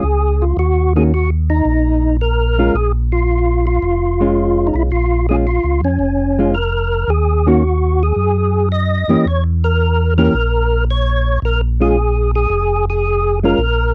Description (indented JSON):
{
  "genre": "soul jazz organ trio",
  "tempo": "111 BPM",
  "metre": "4/4",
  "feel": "swing 69% on 8ths",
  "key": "Bb minor",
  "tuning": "A4 = 440 Hz",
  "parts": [
    { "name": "percussive tonewheel organ", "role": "melody", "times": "0.0-13.9 s", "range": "Db4 to Eb5", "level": "-20 LUFS", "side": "equal", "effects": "slow rotary speaker, overdrive, chorus vibrato" },
    { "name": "hollow-body jazz guitar", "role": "accompaniment", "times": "0.0-13.6 s", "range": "Eb3 to G4", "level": "-17 LUFS", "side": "equal", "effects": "none" },
    { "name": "mellow tonewheel organ", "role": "bass", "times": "0.0-13.9 s", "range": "F1 to Gb2", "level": "-18 LUFS", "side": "equal", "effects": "slow rotary speaker" }
  ],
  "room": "little or no reverb",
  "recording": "dry, close 1970s-style studio recording",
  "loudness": "-16 LUFS",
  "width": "mono",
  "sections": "0.0-13.9 A section",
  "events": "none",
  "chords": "0.0 Bbm7 (rootless); 0.6 Ebm7; 2.7 Bbm7; 7.1 Ebm7; 9.3 Edim7(no3); 11.4 Bb7(no3)",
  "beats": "0.04 | 0.58 1.12 1.66 2.21 | 2.75 3.29 3.83 4.37 | 4.92 5.46 6.00 6.54 | 7.09 7.63 8.17 8.71 | 9.26 9.80 10.34 10.88 | 11.42 11.97 12.51 13.05 | 13.59"
}